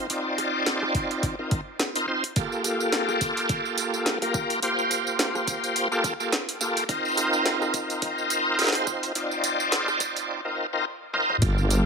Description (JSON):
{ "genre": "glitch hop", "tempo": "106 BPM", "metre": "4/4", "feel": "swing 57% on 16ths", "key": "unclear", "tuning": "A4 = 440 Hz", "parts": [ { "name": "bright tonewheel organ", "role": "stabs", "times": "0.0-11.9 s", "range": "Bb3 to D5", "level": "-25 LUFS", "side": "equal", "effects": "chorus vibrato, slow rotary speaker, sidechain pumping, dub echo" }, { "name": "drum and bass drum kit", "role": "drums", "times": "0.1-11.8 s", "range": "hi-hat, rim click, snare drum, tambourine, toms", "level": "-28 LUFS", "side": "right 1 dB", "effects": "overdrive" }, { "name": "electronic kick drum", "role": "drums", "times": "0.9-11.5 s", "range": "none", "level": "-27 LUFS", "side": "equal", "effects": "overdrive" }, { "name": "wobble bass", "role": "bass", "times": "11.4-11.8 s", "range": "G1", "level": "-22 LUFS", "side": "equal", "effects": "chorus, tube saturation" } ], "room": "moderate plate reverb, RT60 1.3 s, digital ambience", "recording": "high-pass filter", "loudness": "-23 LUFS", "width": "side -5 dB against mid", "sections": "0.0-11.4 A section", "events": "build-up 0.0-11.4; drum fill 11.1", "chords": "0.0 F7sus4; 2.4 Gm9; 6.9 F7sus4", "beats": "| 0.10 0.67 1.23 1.80 | 2.36 2.93 3.50 4.06 | 4.63 5.19 5.76 6.33 | 6.89 7.46 8.02 8.59 | 9.16 9.72 10.29 10.85 | 11.42" }